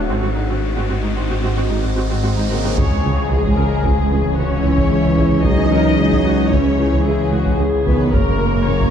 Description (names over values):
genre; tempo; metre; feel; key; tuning
cinematic, hybrid orchestral and electronic film score; 112 BPM; 5/4; straight; C# dorian; A4 = 440 Hz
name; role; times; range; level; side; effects
metallic inharmonic drone; sustained chords; 0.0-8.9 s; E3 to D#5; -23 LUFS; left 2 dB; chorus, built-in reverb, phaser
phased detuned saw bass; bass; 0.0-8.9 s; D1 to C#2; -21 LUFS; equal; phaser
riser and sub drop; sound effects; 0.0-5.5 s; none; -29 LUFS; equal; none
rich symphonic viola section; accompaniment; 0.1-8.9 s; G#3 to C#5; -25 LUFS; equal; none
warm symphonic cello section; bass; 0.1-8.9 s; G#2 to D#4; -23 LUFS; right 2 dB; none
warm symphonic violin section; second line; 2.5-8.9 s; G#4 to D#5; -25 LUFS; left 6 dB; none
mellow French horn section; sustained chords; 2.5-8.9 s; C#3 to F#3; -23 LUFS; left 2 dB; none
clear trombone section; sustained chords; 2.8-8.9 s; E3 to C#4; -26 LUFS; right 3 dB; none
rich symphonic double bass section; bass; 2.8-8.9 s; C#2 to F#2; -24 LUFS; right 4 dB; none
warm tuba; bass; 2.8-8.7 s; F#1 to C#2; -26 LUFS; right 5 dB; none
solo taiko drums; drums; 2.8-8.9 s; none; -22 LUFS; equal; none
room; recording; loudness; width
light reverb; dark, warm production; -14 LUFS; side -8 dB against mid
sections
0.0-2.8 A section; 2.8-8.9 B section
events
build-up 0.0-2.8; riser 0.0-2.8; impact 2.8-5.5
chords
0.1 G#7; 2.8 C#m; 8.1 F#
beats
| 0.10 0.63 1.17 1.70 2.24 | 2.77 3.31 3.85 4.38 4.92 | 5.45 5.99 6.52 7.06 7.59 | 8.13 8.67